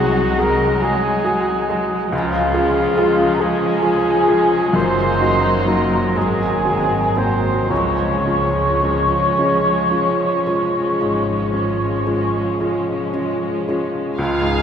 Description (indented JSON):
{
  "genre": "classical, romantic movement for piano and orchestra",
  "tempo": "36-48 BPM (dotted quarters)",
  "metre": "12/8",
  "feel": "rubato",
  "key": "Db major",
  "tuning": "A4 = 440 Hz",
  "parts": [
    { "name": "clear baby grand piano", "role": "melody", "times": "0.0-14.6 s", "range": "C2 to Ab4", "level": "-20 LUFS", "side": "left 1 dB", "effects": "none" },
    { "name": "muted chamber violin section", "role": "melody", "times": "0.0-14.6 s", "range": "C4 to F5", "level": "-31 LUFS", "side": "left 4 dB", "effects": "none" },
    { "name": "mellow large flute ensemble", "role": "second line", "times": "0.0-12.6 s", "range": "F5 to Db6", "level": "-22 LUFS", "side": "equal", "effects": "none" },
    { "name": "muted chamber violin section", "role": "second line", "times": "0.0-14.6 s", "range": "Ab3 to Ab5", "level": "-30 LUFS", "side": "left 2 dB", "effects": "none" },
    { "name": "warm clarinet", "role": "second line", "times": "0.0-12.6 s", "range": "F4 to Db5", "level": "-28 LUFS", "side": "left 1 dB", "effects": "none" },
    { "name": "warm oboe", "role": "second line", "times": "0.0-12.6 s", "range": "F4 to Db5", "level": "-26 LUFS", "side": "right 2 dB", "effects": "none" },
    { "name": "muted chamber viola section", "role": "accompaniment", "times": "0.0-14.6 s", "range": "F3 to F4", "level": "-25 LUFS", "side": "right 1 dB", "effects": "none" },
    { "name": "mellow French horn section", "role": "sustained chords", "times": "0.0-13.8 s", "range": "Eb3 to Bb4", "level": "-27 LUFS", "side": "left 4 dB", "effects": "none" },
    { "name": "muted chamber cello section", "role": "bass", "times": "0.0-14.6 s", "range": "Db2 to Db3", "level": "-29 LUFS", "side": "right 3 dB", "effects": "none" },
    { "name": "muted studio double bass section", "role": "bass", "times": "0.0-14.6 s", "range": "Gb1 to Db2", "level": "-27 LUFS", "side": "right 3 dB", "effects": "none" }
  ],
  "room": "wet cathedral reverb, RT60 5.0 s",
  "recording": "none",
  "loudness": "-15 LUFS",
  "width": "side -8 dB against mid",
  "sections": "0.0-14.2 A section",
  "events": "none",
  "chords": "0.0 Ab7/C; 2.1 Db; 4.7 Ebm/Gb; 6.2 Ab9; 7.7 Db",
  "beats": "0.83 | 2.13 3.40 4.75 6.16 | 7.70 9.37 11.00 12.60 | 14.18"
}